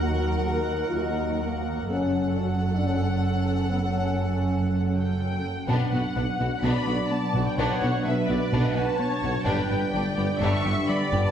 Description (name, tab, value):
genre	cinematic, hybrid orchestral and electronic film score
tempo	127 BPM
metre	4/4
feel	straight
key	B minor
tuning	A4 = 440 Hz
part	rich symphonic violin section	melody	0.0-11.3 s	D5 to C#6	-33 LUFS	left 3 dB	none
part	rich chamber violin section	second line	0.0-11.2 s	G3 to F#5	-33 LUFS	left 1 dB	none
part	rich studio viola section	accompaniment	0.0-11.3 s	A4 to E5	-33 LUFS	right 2 dB	none
part	dark French horn section	sustained chords	0.0-11.3 s	A#3 to B4	-31 LUFS	left 4 dB	none
part	hollow soft pad	sustained chords	0.0-11.3 s	D3 to A5	-33 LUFS	equal	ensemble chorus, phaser
part	rich symphonic double bass section	bass	0.0-11.2 s	F#1 to D#2	-30 LUFS	right 3 dB	none
part	warm symphonic cello section	bass	0.0-11.2 s	D#2 to B2	-31 LUFS	right 2 dB	none
part	mellow trombone section	sustained chords	5.7-11.3 s	B2 to B3	-35 LUFS	right 3 dB	none
part	rubbery square bass	riff	5.7-11.3 s	G2 to B3	-29 LUFS	left 2 dB	none
part	warm tuba	bass	5.7-11.2 s	G1 to B1	-33 LUFS	right 2 dB	none
room	wet recital hall reverb, RT60 1.4 s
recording	heard from further back in the room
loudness	-23 LUFS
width	side -9 dB against mid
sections	0.0-5.7 A section; 5.7-11.3 B section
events	none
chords	0.0 D#m; 1.9 F#m; 5.7 Bm; 9.5 G